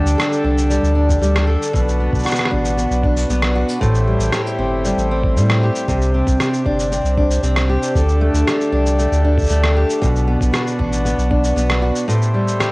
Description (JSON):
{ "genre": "folktronica", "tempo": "116 BPM", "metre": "4/4", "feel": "straight", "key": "unclear", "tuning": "A4 = 440 Hz", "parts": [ { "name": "hand-pumped harmonium", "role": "sustained chords", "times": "0.0-12.7 s", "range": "C3 to C5", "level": "-24 LUFS", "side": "equal", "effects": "cassette tape" }, { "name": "fingerpicked steel-string acoustic guitar", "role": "arpeggios", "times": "0.0-12.7 s", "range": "A2 to A4", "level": "-19 LUFS", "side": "equal", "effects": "cassette tape, tape echo" }, { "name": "warm sub bass", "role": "bass", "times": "0.0-11.9 s", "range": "G1 to A2", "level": "-17 LUFS", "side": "equal", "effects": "none" }, { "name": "electronic shaker and rim click", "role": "drums", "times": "0.1-12.7 s", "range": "none", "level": "-24 LUFS", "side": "equal", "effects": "overdrive, cassette tape" }, { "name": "electronic kick drum", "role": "drums", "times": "1.1-11.4 s", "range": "none", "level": "-21 LUFS", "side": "equal", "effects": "overdrive, cassette tape" } ], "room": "light reverb, digital ambience", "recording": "home recording on cassette", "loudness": "-14 LUFS", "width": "side -23 dB against mid", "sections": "0.0-12.7 A section", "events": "none", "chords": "0.0 Dsus4; 1.7 Bm; 3.8 Am7; 5.9 Csus2; 8.0 Dsus4; 10.0 Bm; 12.1 Am7", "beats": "0.19 0.71 1.23 | 1.74 2.26 2.78 3.29 | 3.81 4.33 4.85 5.36 | 5.88 6.40 6.92 7.43 | 7.95 8.47 8.98 9.50 | 10.02 10.54 11.05 11.57 | 12.09 12.61" }